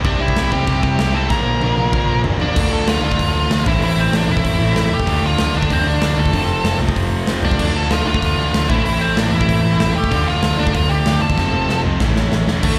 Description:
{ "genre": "punk rock", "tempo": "191 BPM", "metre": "4/4", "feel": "straight", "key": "D minor", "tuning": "A4 = 444 Hz", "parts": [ { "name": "cranked stack guitar", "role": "riff", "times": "0.0-12.8 s", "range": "A2 to G4", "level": "-28 LUFS", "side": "equal", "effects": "overdrive, slapback echo" }, { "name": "crunchy overdriven guitar", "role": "riff", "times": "0.0-12.6 s", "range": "A2 to G4", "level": "-25 LUFS", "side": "equal", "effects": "slapback echo" }, { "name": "crunchy overdriven guitar", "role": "riff", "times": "0.0-12.8 s", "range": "F2 to D4", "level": "-29 LUFS", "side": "equal", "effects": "none" }, { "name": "overdriven picked electric bass", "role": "bass", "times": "0.0-12.8 s", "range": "E1 to C3", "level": "-23 LUFS", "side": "equal", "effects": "none" }, { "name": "big rock drum kit", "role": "drums", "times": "0.0-12.7 s", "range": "crash cymbal, hi-hat, kick drum, snare drum, toms", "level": "-23 LUFS", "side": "equal", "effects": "none" }, { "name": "nasal lead guitar with a parked wah", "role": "melody", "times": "0.1-12.8 s", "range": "A3 to Bb5", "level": "-23 LUFS", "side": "equal", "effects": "overdrive" } ], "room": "little or no reverb", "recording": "live gig heard through the venue's PA, recital hall reverb", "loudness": "-17 LUFS", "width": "mono", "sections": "0.0-2.6 A section; 2.6-12.6 B section", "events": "drum fill 1.3-2.6, 11.4-12.6", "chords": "0.1 C; 1.3 Bb; 2.6 Dm; 3.7 Am; 5.1 Dm; 6.3 F; 7.6 Dm; 8.7 Am; 10.1 Dm; 11.4 F; 12.0 A", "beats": "| 0.05 0.37 0.68 0.99 | 1.31 1.62 1.94 2.25 | 2.57 2.88 3.20 3.51 | 3.83 4.14 4.45 4.77 | 5.08 5.40 5.71 6.03 | 6.34 6.66 6.97 7.29 | 7.60 7.92 8.23 8.54 | 8.86 9.18 9.49 9.80 | 10.12 10.43 10.75 11.06 | 11.38 11.69 12.01 12.32 | 12.64" }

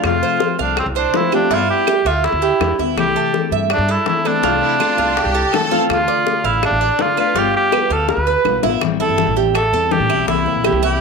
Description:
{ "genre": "latin, Cuban son and guajira", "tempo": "164 BPM", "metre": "4/4", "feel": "straight", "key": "C major", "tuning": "A4 = 440 Hz", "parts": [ { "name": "fingerpicked steel-string acoustic guitar", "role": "accompaniment", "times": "0.0-11.0 s", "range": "C3 to F4", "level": "-22 LUFS", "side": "left 13 dB", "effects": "none" }, { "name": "Cuban tres", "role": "arpeggios", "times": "0.0-11.0 s", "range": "E4 to F5", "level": "-20 LUFS", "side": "right 9 dB", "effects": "none" }, { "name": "upright bass", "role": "bass", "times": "0.0-11.0 s", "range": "G1 to A2", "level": "-23 LUFS", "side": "right 1 dB", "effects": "none" }, { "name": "bongos", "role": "percussion", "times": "0.0-11.0 s", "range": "none", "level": "-24 LUFS", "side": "left 12 dB", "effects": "none" }, { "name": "claves", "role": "percussion", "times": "0.0-10.8 s", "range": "none", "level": "-28 LUFS", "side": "right 15 dB", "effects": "none" }, { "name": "warm cor anglais", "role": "melody", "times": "0.1-11.0 s", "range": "C4 to B4", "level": "-18 LUFS", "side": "right 1 dB", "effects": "none" }, { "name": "bright studio violin section", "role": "second line", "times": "4.6-5.8 s", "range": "E4 to A4", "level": "-20 LUFS", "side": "equal", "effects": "none" } ], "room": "wet spring reverb, RT60 1.1 s, small room reverb", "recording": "1960s-style stereo with parts hard left and right", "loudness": "-14 LUFS", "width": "side -4 dB against mid", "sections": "0.0-8.8 A section; 8.8-11.0 B section", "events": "drum fill 8.1-8.8", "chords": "0.0 F; 1.5 G6; 3.0 C6; 4.4 Fmaj7/C; 5.9 Dm; 7.4 G7; 8.8 Am7; 10.3 C7", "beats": "| 0.04 0.41 0.78 1.14 | 1.51 1.87 2.24 2.61 | 2.97 3.34 3.70 4.07 | 4.43 4.80 5.17 5.53 | 5.90 6.26 6.63 6.99 | 7.36 7.72 8.09 8.46 | 8.82 9.19 9.55 9.92 | 10.28 10.65" }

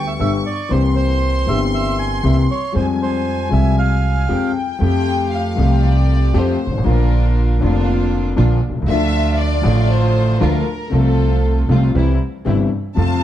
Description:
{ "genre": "tango", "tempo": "118 BPM", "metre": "4/4", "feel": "rubato", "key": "F harmonic minor, F major from 4.8 s", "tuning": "A4 = 444 Hz", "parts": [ { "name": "bandoneon", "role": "melody", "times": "0.0-4.5 s", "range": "C5 to Ab5", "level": "-24 LUFS", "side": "right 5 dB", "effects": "none" }, { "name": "warm studio violin section", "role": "second line", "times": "0.0-13.2 s", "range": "A4 to Db6", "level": "-25 LUFS", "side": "left 2 dB", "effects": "none" }, { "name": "warm grand piano", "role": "accompaniment", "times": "0.0-13.2 s", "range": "F1 to G4", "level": "-19 LUFS", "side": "left 5 dB", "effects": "none" }, { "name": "upright bass", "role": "bass", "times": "0.0-13.2 s", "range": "F1 to F2", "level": "-17 LUFS", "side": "right 1 dB", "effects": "none" }, { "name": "rich chamber string section", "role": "stabs", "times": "4.8-13.2 s", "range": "G3 to G4", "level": "-24 LUFS", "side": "right 3 dB", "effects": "none" } ], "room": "light reverb", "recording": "dark, warm production", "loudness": "-14 LUFS", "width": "side -12 dB against mid", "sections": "0.0-4.8 A section; 4.8-13.2 B section", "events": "violin section solo 4.8-13.2", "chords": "0.0 G; 0.7 C7; 2.7 Fmadd9; 4.8 Fadd9; 6.9 Bb; 8.9 Dm; 10.9 F/C; 11.9 C", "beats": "0.20 | 0.71 1.22 1.73 2.24 | 2.75 3.26 3.77 4.29 | 4.81 5.32 5.83 6.34 | 6.85 7.36 7.87 8.37 | 8.88 9.39 9.90 10.41 | 10.92 11.43 11.94 12.45 | 12.96" }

